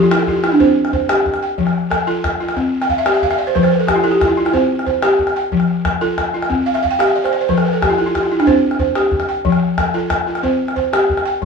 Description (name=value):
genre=west african traditional, West African string and xylophone music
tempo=122 BPM (dotted quarters)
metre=12/8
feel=straight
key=C major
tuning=A4 = 439 Hz
part: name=balafon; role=arpeggios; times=0.0-11.4 s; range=F3 to G5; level=-14 LUFS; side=equal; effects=none
part: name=calabash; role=percussion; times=0.0-11.4 s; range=none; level=-20 LUFS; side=left 2 dB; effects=none
room=moderate studio reverb, RT60 0.6 s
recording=band playing live in one room, small room ambience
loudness=-14 LUFS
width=side -5 dB against mid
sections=0.6-11.4 A section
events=balafon fill 0.0-0.6, 2.8-4.5, 6.7-8.5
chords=0.0 N.C.; 0.6 C5; 1.6 F; 2.6 C5; 3.6 F; 4.5 C5; 5.5 F; 6.5 C5; 7.5 F; 8.5 C5; 9.5 F; 10.4 C5